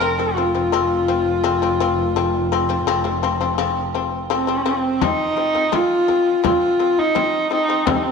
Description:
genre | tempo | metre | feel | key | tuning
mongolian traditional, Mongolian folk | 84 BPM | 4/4 | straight | unclear | A4 = 440 Hz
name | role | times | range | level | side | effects
rich horsehead fiddle | melody | 0.0-8.1 s | C4 to Bb4 | -18 LUFS | equal | none
shamisen | arpeggios | 0.0-8.1 s | C3 to C4 | -22 LUFS | left 6 dB | none
rich double bass | drone | 0.0-5.1 s | F1 | -26 LUFS | left 1 dB | none
frame drum | percussion | 5.0-8.0 s | none | -24 LUFS | left 8 dB | none
room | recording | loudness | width
wet echo chamber reverb, RT60 2.3 s | 1960s-style stereo | -17 LUFS | side -5 dB against mid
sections
0.0-5.0 A section; 5.0-8.1 B section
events
none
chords
0.0 F5

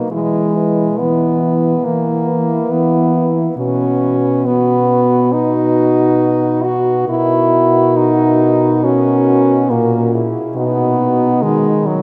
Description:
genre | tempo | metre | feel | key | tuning
classical, lyrical piece for horn quartet | 69 BPM | 4/4 | rubato | B major | A4 = 440 Hz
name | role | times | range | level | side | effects
warm French horn | melody | 0.0-12.0 s | F#4 to B4 | -25 LUFS | equal | none
warm French horn | second line | 0.0-12.0 s | D#4 to F#4 | -23 LUFS | equal | none
clear French horn | accompaniment | 0.0-12.0 s | F#3 to F#4 | -17 LUFS | equal | none
mellow French horn | bass | 0.1-12.0 s | A#2 to E3 | -20 LUFS | equal | none
room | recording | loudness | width
wet cathedral reverb, RT60 6.0 s | dark, warm production | -14 LUFS | mono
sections
0.0-12.0 A section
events
none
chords
0.1 E; 3.6 B; 7.1 F#7/B; 10.6 B

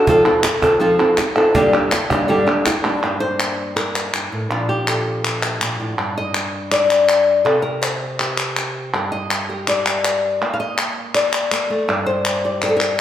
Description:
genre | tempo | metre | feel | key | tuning
flamenco | 163 BPM | 4/4 | straight | G minor | A4 = 440 Hz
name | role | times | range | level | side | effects
flamenco guitar | melody | 0.0-13.0 s | G2 to F5 | -17 LUFS | left 1 dB | none
cajon | percussion | 0.1-2.8 s | none | -25 LUFS | right 2 dB | none
palmas hand claps | percussion | 0.3-13.0 s | none | -21 LUFS | equal | none
room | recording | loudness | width
wet large studio reverb, RT60 1.5 s | heard from further back in the room | -16 LUFS | side -10 dB against mid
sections
0.0-3.0 A section; 3.0-13.0 B section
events
none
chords
0.1 F; 1.5 Gm; 4.5 Bb; 6.0 N.C.; 7.5 C5; 8.9 Gm; 10.4 Bb; 11.9 Gm

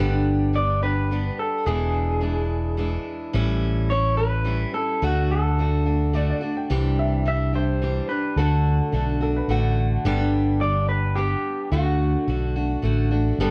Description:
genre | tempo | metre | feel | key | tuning
honky-tonk and classic country | 107 BPM | 3/4 | straight | G major | A4 = 440 Hz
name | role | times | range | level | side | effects
picked steel-string acoustic guitar | accompaniment | 0.0-13.5 s | E2 to G4 | -28 LUFS | equal | none
fretless electric bass | bass | 0.0-13.5 s | E1 to D2 | -25 LUFS | equal | analog chorus
electric guitar through a small old amp | melody | 0.6-13.5 s | F#4 to E5 | -29 LUFS | equal | none
warm upright piano | second line | 6.1-10.0 s | A4 to G5 | -34 LUFS | equal | none
room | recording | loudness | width
moderate large studio reverb, RT60 1.5 s | none | -23 LUFS | mono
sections
0.0-13.4 A section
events
none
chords
0.0 G; 1.7 E7; 3.3 A7; 5.0 D; 6.7 Cadd9; 8.4 D; 10.0 G; 11.7 D

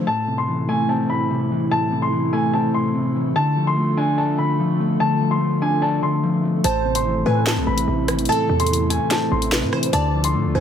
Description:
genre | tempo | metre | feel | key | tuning
hip hop, drill | 146 BPM | 4/4 | half-time | A harmonic minor | A4 = 440 Hz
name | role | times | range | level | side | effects
dark baby grand piano | melody | 0.0-10.6 s | G#5 to C6 | -24 LUFS | left 1 dB | low-pass filter, ping-pong delay
mellow electric guitar | accompaniment | 0.0-10.6 s | A2 to D5 | -21 LUFS | left 2 dB | low-pass filter
warbly tape-like pad | sustained chords | 0.1-10.6 s | C3 to A4 | -27 LUFS | right 3 dB | chorus, built-in reverb
glassy wavetable pluck | second line | 6.6-10.6 s | A4 to D5 | -26 LUFS | right 4 dB | chorus, ping-pong delay
hard-hitting 808-style bass | bass | 6.6-10.6 s | G#1 to A2 | -23 LUFS | right 1 dB | none
drill drum kit | drums | 6.6-10.3 s | handclaps, hi-hat, rim click, snare drum | -24 LUFS | equal | none
room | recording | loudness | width
digital ambience | none | -18 LUFS | side -8 dB against mid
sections
0.1-10.6 A section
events
none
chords
0.1 Am; 3.4 Dm; 6.6 Am; 9.9 Dm

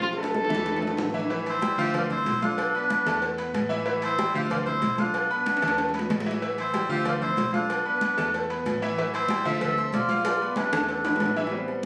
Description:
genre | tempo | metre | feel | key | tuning
latin, salsa | 188 BPM | 4/4 | straight | A minor | A4 = 440 Hz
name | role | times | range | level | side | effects
clear trumpet | melody | 0.0-1.1 s | F4 to A4 | -31 LUFS | equal | none
bright baby grand piano | accompaniment | 0.0-11.9 s | E3 to F6 | -32 LUFS | equal | none
fingered electric bass | bass | 0.0-11.9 s | A1 to E2 | -37 LUFS | equal | none
bongos and cowbell | percussion | 0.0-11.5 s | none | -35 LUFS | equal | none
congas | percussion | 0.0-11.9 s | none | -35 LUFS | equal | none
timbales and agogo bells | percussion | 0.0-11.8 s | none | -37 LUFS | equal | none
melodica | melody | 1.5-11.3 s | D4 to E5 | -28 LUFS | equal | slapback echo
room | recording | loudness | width
light reverb | recorded on a phone in the room, studio reverb | -26 LUFS | mono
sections
0.0-1.3 A section; 1.3-11.5 B section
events
drum fill 0.0-1.3, 5.5-6.4, 10.2-11.5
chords
0.0 Fmaj7#11/B; 0.7 Esus4; 1.3 Am7; 1.9 Dm7; 2.6 Bm7b5; 3.2 Esus4; 3.9 Am7; 4.5 Dm7; 5.1 Bm7b5; 5.8 Esus4; 6.4 Am7; 7.1 Dm7; 7.7 Bm7b5; 8.3 Esus4; 9.0 Am7; 9.6 Dm7; 10.2 Bm7b5; 10.9 E7sus4

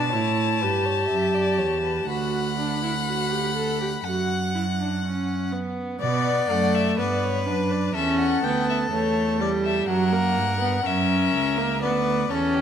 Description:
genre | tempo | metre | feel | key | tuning
classical, baroque-style fugue for string quartet | 62 BPM | 4/4 | straight | B minor | A4 = 441 Hz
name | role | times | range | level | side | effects
rich violin | melody | 0.0-12.6 s | B4 to B5 | -27 LUFS | left 7 dB | none
warm violin | second line | 0.0-12.6 s | G4 to F#5 | -30 LUFS | left 2 dB | none
warm viola | accompaniment | 0.0-12.6 s | F#3 to A4 | -25 LUFS | right 1 dB | none
dark cello | bass | 0.0-12.6 s | C#2 to B2 | -27 LUFS | right 5 dB | none
room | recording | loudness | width
moderate scoring stage reverb, RT60 1.6 s | none | -21 LUFS | side -8 dB against mid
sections
0.0-6.0 A section; 6.0-12.6 B section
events
none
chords
0.0 C#dim; 2.1 Bm/D; 4.0 F#5; 6.0 Bm; 8.0 C#m7b5; 9.9 F#7; 11.8 Bm/D

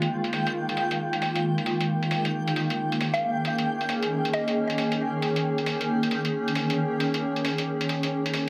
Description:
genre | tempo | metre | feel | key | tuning
future garage | 135 BPM | 4/4 | swing 63% on 16ths | unclear | A4 = 440 Hz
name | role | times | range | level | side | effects
granular cloud pad | sustained chords | 0.0-8.5 s | Eb3 to Ab4 | -28 LUFS | equal | built-in reverb
electronic hi-hat | drums | 0.0-8.4 s | none | -34 LUFS | equal | low-pass filter on hats, low-pass filter on room
backwards swelling texture | texture | 0.0-8.5 s | G5 | -35 LUFS | equal | built-in reverb
mallet-like synth pluck | melody | 3.1-4.8 s | Eb5 to F5 | -32 LUFS | equal | chorus, phaser, cassette tape, delay
room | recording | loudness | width
wet concert hall reverb, RT60 2.2 s | vinyl crackle | -26 LUFS | mono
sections
0.0-8.5 A section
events
none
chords
0.0 Fm7; 1.9 Eb7sus4

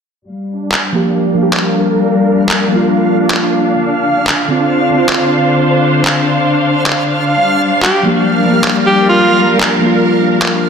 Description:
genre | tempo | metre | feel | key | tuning
future garage | 135 BPM | 4/4 | swing 66% on 16ths | G minor | A4 = 439 Hz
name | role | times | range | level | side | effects
dark studio string section | sustained chords | 0.3-10.7 s | D3 to F5 | -14 LUFS | left 2 dB | low-pass filter
backwards swelling texture | texture | 1.1-10.7 s | F5 | -20 LUFS | right 3 dB | built-in reverb
electronic handclaps | drums | 0.7-10.5 s | none | -17 LUFS | equal | soft clipping on snare, studio reverb
muted felt-like synth keys | accompaniment | 0.9-10.7 s | D3 to G4 | -15 LUFS | right 1 dB | chorus, low-pass filter, tape echo
bright alto saxophone | melody | 7.8-9.5 s | F4 to G4 | -14 LUFS | equal | vintage 12-bit sampler grit, analog delay
room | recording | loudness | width
wet lush hall reverb, RT60 1.6 s, small room ambience | dense, heavily limited modern master | -10 LUFS | side -6 dB against mid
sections
0.3-10.7 A section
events
filter sweep on string section 0.3-10.7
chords
0.3 Gm7; 3.8 Dm7; 7.4 Gm7

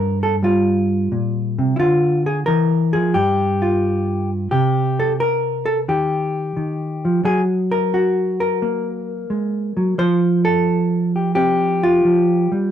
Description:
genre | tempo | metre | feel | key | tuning
solo jazz | 88 BPM | 4/4 | swing 69% on 8ths | unclear | A4 = 440 Hz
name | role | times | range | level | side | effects
hollow-body jazz guitar | solo | 0.0-12.7 s | G2 to C5 | -16 LUFS | equal | none
room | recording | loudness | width
light reverb | dark, warm production | -16 LUFS | side -10 dB against mid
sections
0.0-12.7 A section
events
none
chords
0.0 Gm7; 1.8 Bb7#11/D; 3.1 N.C.; 4.5 Cm7; 7.2 F#; 10.0 Fadd9

